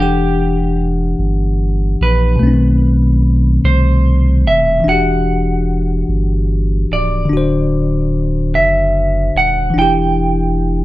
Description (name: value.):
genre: slow six-eight R&B.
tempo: 49 BPM (dotted quarters).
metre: 6/8.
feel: straight.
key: E minor.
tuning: A4 = 441 Hz.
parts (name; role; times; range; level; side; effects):
clean electric guitar; melody; 0.0-10.8 s; G4 to G5; -17 LUFS; right 2 dB; spring reverb, slapback echo.
bell-like tine electric piano; accompaniment; 0.0-10.8 s; B2 to F#5; -17 LUFS; left 2 dB; none.
saturated sub bass; bass; 0.0-10.8 s; C#1 to C2; -15 LUFS; equal; none.
room: little or no reverb.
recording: dry, close 1970s-style studio recording.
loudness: -12 LUFS.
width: side -16 dB against mid.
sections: 0.0-10.8 A section.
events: none.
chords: 0.0 Em9; 2.4 B7b9; 4.8 Em9; 7.3 D7; 9.7 Em7.